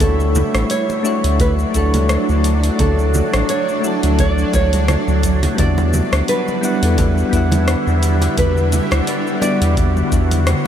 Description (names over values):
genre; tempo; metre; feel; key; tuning
sunset chillout; 86 BPM; 4/4; swing 56% on 16ths; D major; A4 = 438 Hz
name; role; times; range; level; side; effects
nylon-string guitar; melody; 0.0-10.4 s; G4 to D5; -23 LUFS; equal; analog delay
soft electric-piano-like synth keys; accompaniment; 0.0-10.7 s; G3 to F#5; -20 LUFS; left 1 dB; chorus, tremolo, auto-pan, ping-pong delay
shimmering ambient pad; sustained chords; 0.0-10.7 s; D3 to F#4; -22 LUFS; right 1 dB; chorus, built-in reverb, phaser
round analog bass; bass; 0.0-10.5 s; A1 to E2; -16 LUFS; equal; none
electronic kick drum; drums; 0.0-10.3 s; none; -21 LUFS; equal; overdrive, studio ambience
smooth R&B drum kit; drums; 0.0-10.6 s; cabasa, congas, hi-hat, rim click; -25 LUFS; right 1 dB; studio ambience
congas; percussion; 0.4-10.6 s; none; -27 LUFS; right 2 dB; none
room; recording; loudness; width
moderate huge ambient reverb, RT60 7.7 s; dreamy mix soaked in reverb; -14 LUFS; side -9 dB against mid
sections
0.0-10.7 A section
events
band accent 10.5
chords
0.0 Dmaj7; 5.6 Em7